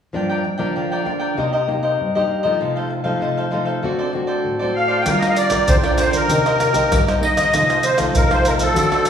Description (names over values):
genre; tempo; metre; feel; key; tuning
samba and choro; 98 BPM; 4/4; straight; G minor; A4 = 438 Hz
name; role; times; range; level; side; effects
cavaquinho; accompaniment; 0.1-9.1 s; Eb4 to G5; -22 LUFS; left 2 dB; none
nylon-string guitar; accompaniment; 0.1-9.1 s; G2 to Bb4; -22 LUFS; left 1 dB; none
musette accordion; melody; 4.8-9.1 s; A4 to G5; -17 LUFS; right 1 dB; none
maracas, surdo, pandeiro and tamborim; percussion; 5.1-9.1 s; none; -20 LUFS; equal; none
room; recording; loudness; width
wet large studio reverb, RT60 1.3 s; heard from further back in the room, small room ambience; -16 LUFS; side -8 dB against mid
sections
0.1-5.1 A section; 5.1-9.1 B section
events
none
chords
0.1 Gm7; 1.4 Cm7; 2.6 F7/C; 3.8 D7; 5.1 Gm7; 6.3 Cm7; 7.5 F7/C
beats
| 0.14 0.76 1.37 1.99 | 2.60 3.22 3.83 4.45 | 5.06 5.68 6.29 6.91 | 7.52 8.13 8.75